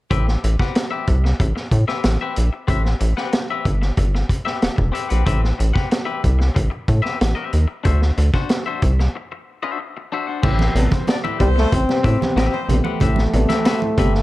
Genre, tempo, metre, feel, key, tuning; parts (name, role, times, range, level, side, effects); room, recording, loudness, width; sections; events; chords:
funk; 93 BPM; 4/4; straight; A dorian; A4 = 439 Hz
twangy electric guitar; accompaniment; 0.1-14.2 s; C4 to F#5; -27 LUFS; left 6 dB; spring reverb
rubbery square bass; bass; 0.1-14.2 s; E1 to A2; -17 LUFS; equal
vintage drum kit; drums; 0.1-14.2 s; crash cymbal, hi-hat, kick drum, snare drum; -21 LUFS; equal
dark upright piano; stabs; 10.4-14.1 s; A2 to B3; -26 LUFS; equal
congas; percussion; 10.4-14.0 s; -27 LUFS; right 5 dB
warm horn section; second line; 10.8-12.8 s; A3 to D5; -30 LUFS; left 3 dB; tape echo
mellow trombone; melody; 11.4-14.2 s; G3 to C4; -21 LUFS; equal
little or no reverb; dark, warm production; -16 LUFS; side -18 dB against mid
0.1-10.4 A section; 10.4-14.2 B section
break 9.1-10.4
0.1 Am9; 7.9 D9; 10.4 Am9